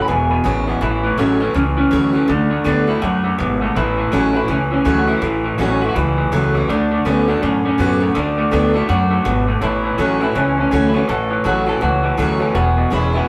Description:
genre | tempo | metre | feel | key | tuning
rockabilly | 164 BPM | 4/4 | swing 62% on 8ths | A major | A4 = 441 Hz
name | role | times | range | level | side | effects
electric guitar through a small old amp | melody | 0.0-13.3 s | B3 to B5 | -22 LUFS | equal | none
dark upright piano | accompaniment | 0.0-0.8, 9.6-13.2 s | B4 to B5 | -30 LUFS | equal | none
picked steel-string acoustic guitar | accompaniment | 0.0-13.3 s | E2 to F#4 | -25 LUFS | equal | none
electric guitar through a small old amp | riff | 0.0-13.3 s | E2 to B3 | -22 LUFS | equal | spring reverb
upright bass | bass | 0.1-13.2 s | E1 to F#2 | -23 LUFS | equal | none
room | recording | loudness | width
moderate large studio reverb, RT60 1.0 s | band playing live in one room | -17 LUFS | mono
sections
0.8-13.3 A section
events
none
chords
0.1 E6; 0.8 A6; 2.3 D6; 3.8 A6; 6.7 D6; 9.6 A6; 12.6 E6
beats
0.09 0.46 | 0.82 1.19 1.55 1.92 | 2.29 2.65 3.02 3.39 | 3.75 4.12 4.49 4.86 | 5.22 5.59 5.96 6.32 | 6.69 7.05 7.42 7.79 | 8.15 8.52 8.89 9.25 | 9.62 9.99 10.35 10.72 | 11.09 11.45 11.82 12.18 | 12.55 12.92

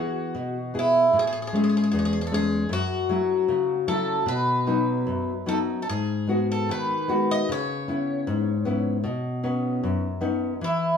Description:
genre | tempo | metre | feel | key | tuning
fado-style ballad | 76 BPM | 2/4 | rubato | unclear | A4 = 444 Hz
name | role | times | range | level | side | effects
picked twelve-string acoustic guitar | melody | 0.0-11.0 s | E4 to D#5 | -25 LUFS | equal | none
nylon-string guitar | accompaniment | 0.0-11.0 s | E2 to G#4 | -24 LUFS | left 2 dB | none
room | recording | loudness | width
wet large studio reverb, RT60 1.0 s | band playing live in one room | -22 LUFS | side -7 dB against mid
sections
0.0-11.0 A section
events
none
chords
0.0 E; 1.1 Amaj7; 2.7 F#m7; 4.3 B; 5.9 G#m7; 7.5 C#m7; 9.1 Badd9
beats
0.34 | 1.13 1.92 | 2.70 3.48 | 4.26 5.07 | 5.88 6.68 | 7.49 8.28 | 9.05 9.83 | 10.61

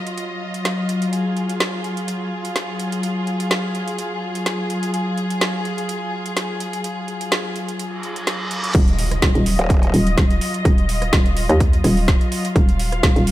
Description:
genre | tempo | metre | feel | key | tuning
bass house | 126 BPM | 4/4 | swing 54% on 16ths | Eb minor | A4 = 440 Hz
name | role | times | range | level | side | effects
rich symphonic string section | sustained chords | 0.0-13.3 s | Gb3 to F5 | -24 LUFS | left 1 dB | sidechain pumping, low-pass filter
garage drum kit | drums | 0.1-13.3 s | crash cymbal, hi-hat, rim click, snare drum | -24 LUFS | right 1 dB | overdrive
reverse cymbal and impact | sound effects | 8.0-10.7 s | none | -28 LUFS | right 1 dB | none
hollow knocking FM bass | bass | 8.7-13.3 s | Eb1 to Eb2 | -18 LUFS | equal | tube saturation, sidechain pumping
electronic kick drum | drums | 8.7-13.1 s | none | -16 LUFS | equal | overdrive
growl bass | bass | 9.6-9.9 s | Eb1 | -19 LUFS | equal | chorus, sidechain pumping
room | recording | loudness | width
digital ambience | none | -18 LUFS | side -15 dB against mid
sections
0.0-8.7 A section; 8.7-13.3 B section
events
reverse cymbal 8.0-8.7; drop 8.7-13.3; impact 8.7-10.7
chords
0.0 Ebmadd9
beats
0.18 0.65 | 1.13 1.60 2.08 2.56 | 3.03 3.51 3.98 4.46 | 4.94 5.41 5.89 6.37 | 6.84 7.32 7.79 8.27 | 8.75 9.22 9.70 10.18 | 10.65 11.13 11.60 12.08 | 12.56 13.03

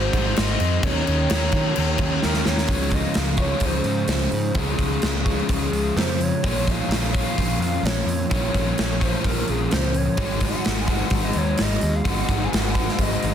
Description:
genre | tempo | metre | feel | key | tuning
rock, shoegaze and dream pop | 128 BPM | 4/4 | straight | Db major | A4 = 440 Hz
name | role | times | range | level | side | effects
reedy FM lead | melody | 0.0-13.3 s | Ab4 to Ab5 | -29 LUFS | right 1 dB | chorus, analog delay
overdriven semi-hollow guitar | riff | 0.0-13.3 s | Bb2 to Db5 | -25 LUFS | left 1 dB | lush chorus
fuzz picked electric bass | bass | 0.0-13.3 s | Ab1 to Eb3 | -25 LUFS | equal | overdrive
gated 80s drum kit | drums | 0.1-13.3 s | crash cymbal, hi-hat, kick drum, snare drum | -24 LUFS | equal | none
room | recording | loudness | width
light reverb, studio reverb | dense, heavily limited modern master | -19 LUFS | side -9 dB against mid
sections
0.0-2.7 A section; 2.7-13.3 B section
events
drum fill 2.2-2.7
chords
0.0 Ab7; 0.8 Eb7; 2.7 Dbmaj7; 6.4 Bbm; 10.2 Ab7(no3)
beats
0.36 | 0.83 1.29 1.76 2.23 | 2.69 3.16 3.63 4.09 | 4.56 5.03 5.50 5.97 | 6.43 6.90 7.37 7.84 | 8.31 8.78 9.24 9.71 | 10.18 10.65 11.12 11.59 | 12.05 12.52 12.99

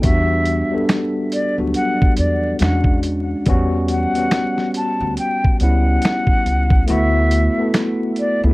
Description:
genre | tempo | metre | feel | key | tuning
lo-fi hip hop | 70 BPM | 4/4 | swing 60% on 16ths | D major | A4 = 440 Hz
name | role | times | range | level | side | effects
breathy jazz flute | melody | 0.0-8.4 s | D5 to A5 | -22 LUFS | left 1 dB | low-pass filter, tape echo
tine electric piano | accompaniment | 0.0-8.5 s | F#3 to A4 | -20 LUFS | equal | medium stereo tremolo, cassette tape, low-pass filter
upright bass | bass | 0.0-8.5 s | C#2 to E2 | -18 LUFS | equal | none
dusty soul sampler-style drum kit | drums | 0.0-8.4 s | finger snaps, hi-hat, kick drum, snare drum | -17 LUFS | equal | none
finger snap | percussion | 7.7-8.0 s | none | -36 LUFS | right 3 dB | none
room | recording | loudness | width
moderate studio reverb, RT60 0.5 s | vinyl crackle | -15 LUFS | side -20 dB against mid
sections
0.0-6.9 A section; 6.9-8.5 A section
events
kick muted 6.9-8.5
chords
0.0 Em9; 2.6 E13; 3.5 A13 (rootless); 6.9 D69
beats
| 0.03 0.89 1.75 2.60 | 3.46 4.32 5.17 6.03 | 6.89 7.75

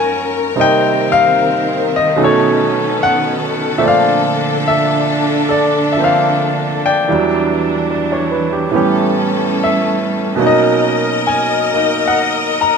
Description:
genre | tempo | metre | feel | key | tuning
jazz ballad | 73 BPM | 4/4 | swing 66% on 8ths | unclear | A4 = 439 Hz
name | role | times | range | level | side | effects
clear grand piano | accompaniment | 0.0-12.8 s | E2 to A#5 | -14 LUFS | equal | none
rich symphonic string section | sustained chords | 0.0-12.8 s | D3 to D#5 | -17 LUFS | left 1 dB | none
room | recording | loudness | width
light reverb | close, detailed microphones | -12 LUFS | side -6 dB against mid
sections
0.0-12.8 A section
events
none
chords
0.0 F#maj7; 0.5 Cm7; 2.2 B9; 3.8 A#maj7; 7.1 Em7; 8.7 A9; 10.4 Bmaj7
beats
| 0.55 1.36 2.17 2.98 | 3.80 4.62 5.43 6.25 | 7.07 7.89 8.72 9.55 | 10.38 11.20 12.01

